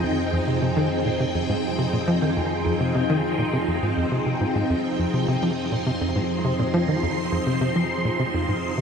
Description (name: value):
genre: ambient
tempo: 103 BPM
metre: 4/4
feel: straight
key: F minor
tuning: A4 = 441 Hz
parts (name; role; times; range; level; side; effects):
- phased string machine; sustained chords; 0.0-8.8 s; F3 to C6; -24 LUFS; equal; ensemble chorus, phaser
- tight sequencer bass; riff; 0.0-8.8 s; F2 to F3; -24 LUFS; equal; analog chorus, analog delay
- analog drone; bass; 0.0-8.8 s; F2; -34 LUFS; right 1 dB; chorus
room: wet huge ambient reverb, RT60 7.2 s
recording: in a vast, echoing space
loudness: -21 LUFS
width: side -6 dB against mid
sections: 0.0-8.8 A section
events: none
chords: 0.0 Fm7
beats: | 0.04 0.62 1.20 1.78 | 2.37 2.95 3.53 4.12 | 4.70 5.28 5.86 6.45 | 7.03 7.61 8.19 8.78